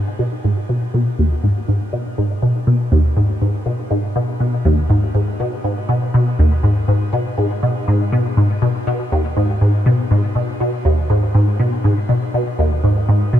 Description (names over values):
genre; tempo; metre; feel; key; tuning
ambient; 121 BPM; 4/4; straight; G# minor; A4 = 440 Hz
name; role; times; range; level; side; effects
resonant blip pluck; solo; 0.0-13.4 s; D#2 to B2; -15 LUFS; equal; phaser, ensemble chorus, ping-pong delay
room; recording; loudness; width
light reverb; none; -15 LUFS; side -11 dB against mid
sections
0.0-13.4 A section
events
none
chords
none